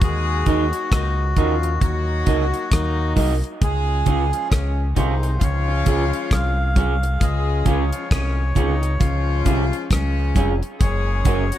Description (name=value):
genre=roots reggae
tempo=67 BPM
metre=4/4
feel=swing 59% on 16ths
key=Db major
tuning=A4 = 440 Hz
part: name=melodica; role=melody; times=0.0-11.6 s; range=Gb4 to F5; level=-27 LUFS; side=left 1 dB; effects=dub echo
part: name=clear horn section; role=second line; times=0.0-11.6 s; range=C3 to Ab4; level=-27 LUFS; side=left 4 dB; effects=dub echo
part: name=deep dub fingered electric bass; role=bass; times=0.0-11.5 s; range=F1 to Eb2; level=-21 LUFS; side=equal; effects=none
part: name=damped 70s drum kit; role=drums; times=0.0-11.6 s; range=hi-hat, kick drum, rim click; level=-20 LUFS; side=equal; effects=none
part: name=congas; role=percussion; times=0.0-11.5 s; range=none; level=-29 LUFS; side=right 5 dB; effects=none
part: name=electric guitar through a small old amp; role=accompaniment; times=0.5-11.4 s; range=Db4 to Eb5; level=-27 LUFS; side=right 5 dB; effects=lush chorus, dub echo
room=little or no reverb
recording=none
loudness=-18 LUFS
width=side -12 dB against mid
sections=0.0-11.6 A section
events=none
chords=0.0 Ebm; 3.6 Db; 10.8 Gb